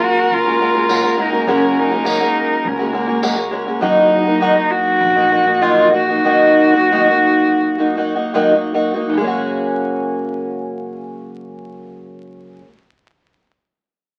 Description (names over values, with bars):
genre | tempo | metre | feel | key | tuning
acoustic folk duo or small band | 72-103 BPM | 4/4 | straight | F# major | A4 = 439 Hz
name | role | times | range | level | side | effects
warm cello | melody | 0.0-8.3 s | A#3 to F#4 | -19 LUFS | equal | none
clear violin | second line | 0.0-3.8 s | A#4 | -23 LUFS | equal | none
fingerpicked twelve-string acoustic guitar | accompaniment | 0.0-12.8 s | F#2 to F#4 | -19 LUFS | equal | none
upright bass | bass | 0.0-6.2 s | F#1 to C#2 | -32 LUFS | equal | none
tambourine | percussion | 0.9-3.4 s | none | -30 LUFS | equal | none
room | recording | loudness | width
moderate small room reverb, RT60 0.5 s | very old 78 rpm record, vinyl crackle | -15 LUFS | mono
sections
0.0-9.2 A section; 9.2-12.5 B section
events
slowing down 3.8-9.2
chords
0.0 F#add9; 3.8 D#m/F#; 9.2 F#add9